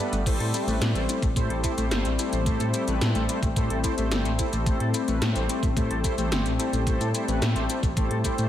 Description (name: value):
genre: synthwave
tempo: 109 BPM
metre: 4/4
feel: straight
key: A minor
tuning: A4 = 442 Hz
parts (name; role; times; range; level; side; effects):
- warm analog pad; sustained chords; 0.0-8.5 s; G3 to C4; -30 LUFS; left 4 dB; chorus, sidechain pumping
- mellow electric guitar; riff; 0.0-8.5 s; G3 to A4; -34 LUFS; left 2 dB; lush chorus, digital delay
- mellow synth brass; stabs; 0.0-8.5 s; A3 to C5; -31 LUFS; right 1 dB; chorus, tape echo
- dark detuned saw bass; bass; 0.1-8.5 s; G1 to A2; -27 LUFS; equal; sidechain pumping
- 80s electronic pad drums; drums; 0.1-8.5 s; crash cymbal, hi-hat, shaker, snare drum; -31 LUFS; equal; none
- electronic kick drum; drums; 0.3-8.4 s; none; -26 LUFS; equal; none
room: light reverb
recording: dense, heavily limited modern master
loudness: -23 LUFS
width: side -11 dB against mid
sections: 0.0-8.5 A section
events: break 0.0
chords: 0.3 Am7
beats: | 0.26 0.81 1.36 1.91 | 2.46 3.01 3.56 4.12 | 4.67 5.22 5.77 6.32 | 6.87 7.42 7.97